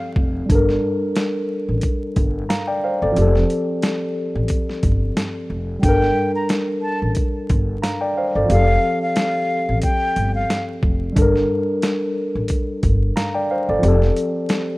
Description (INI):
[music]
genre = hip hop, boom-bap hip-hop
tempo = 90 BPM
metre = 4/4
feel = swing 57% on 16ths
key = G minor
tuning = A4 = 440 Hz
[part]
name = tine electric piano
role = accompaniment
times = 0.0-14.8 s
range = F3 to Bb5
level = -21 LUFS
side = left 1 dB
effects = medium stereo tremolo, cassette tape, high-pass filter, low-pass filter
[part]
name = upright bass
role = bass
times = 0.2-14.1 s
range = F1 to A1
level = -20 LUFS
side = equal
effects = none
[part]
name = boom bap sampler-style drum kit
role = drums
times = 0.2-14.7 s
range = hi-hat, kick drum, shaker, snare drum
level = -21 LUFS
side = equal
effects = none
[part]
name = breathy concert flute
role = melody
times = 5.8-10.7 s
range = F5 to Bb5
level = -22 LUFS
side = equal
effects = high-pass filter, low-pass filter, slapback echo
[sound]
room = little or no reverb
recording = rough home demo mix, vinyl crackle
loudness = -17 LUFS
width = side -20 dB against mid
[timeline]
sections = 0.0-14.8 A section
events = none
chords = 0.5 Gmadd9; 3.2 Fadd9; 5.8 Gmadd9; 8.5 Fadd9; 11.2 Gmadd9; 13.8 Fadd9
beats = | 0.50 1.16 1.83 2.50 | 3.16 3.83 4.50 5.16 | 5.83 6.50 7.16 7.83 | 8.50 9.16 9.83 10.50 | 11.16 11.83 12.50 13.16 | 13.83 14.50